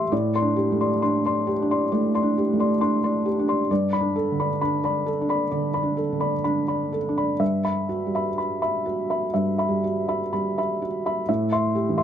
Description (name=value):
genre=neoclassical minimalist piano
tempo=61-68 BPM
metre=4/4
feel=rubato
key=unclear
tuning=A4 = 439 Hz
part: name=felt-muted upright piano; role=solo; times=0.0-12.0 s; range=G2 to C6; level=-21 LUFS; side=equal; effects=none
room=little or no reverb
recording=close, detailed microphones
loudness=-21 LUFS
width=side -9 dB against mid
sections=0.0-11.3 A section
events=none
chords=0.1 D7sus4/A; 3.7 Gadd9; 7.4 Emadd9/G; 11.3 Am7